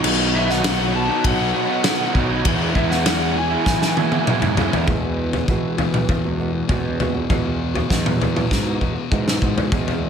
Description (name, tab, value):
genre	quiet-loud alternative rock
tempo	99 BPM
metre	4/4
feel	straight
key	unclear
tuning	A4 = 440 Hz
part	soft string machine	sustained chords	0.0-4.9 s	D#4 to B5	-33 LUFS	right 1 dB	none
part	fuzz guitar	riff	0.0-10.1 s	E2 to E4	-26 LUFS	left 8 dB	distortion
part	raw garage guitar	riff	0.0-4.9 s	B2 to E4	-24 LUFS	right 10 dB	overdrive, slapback echo
part	fuzz picked electric bass	bass	0.0-10.1 s	B1 to E3	-24 LUFS	equal	overdrive
part	loose indie drum kit	drums	0.0-10.0 s	crash cymbal, kick drum, ride cymbal, snare drum, toms	-21 LUFS	equal	none
part	lead guitar through a small cranked amp	melody	0.4-4.2 s	E5 to A5	-26 LUFS	left 2 dB	overdrive, slapback echo, tape echo
part	fingerpicked old ladder-braced acoustic guitar	arpeggios	4.9-10.1 s	E2 to F#4	-26 LUFS	right 3 dB	none
room	moderate lush hall reverb, RT60 1.9 s, small room reverb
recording	big arena sound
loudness	-17 LUFS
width	side -7 dB against mid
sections	0.0-4.9 A section; 4.9-9.7 B section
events	drum fill 3.7-4.9, 8.5-9.7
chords	0.0 Badd9; 2.5 Eadd9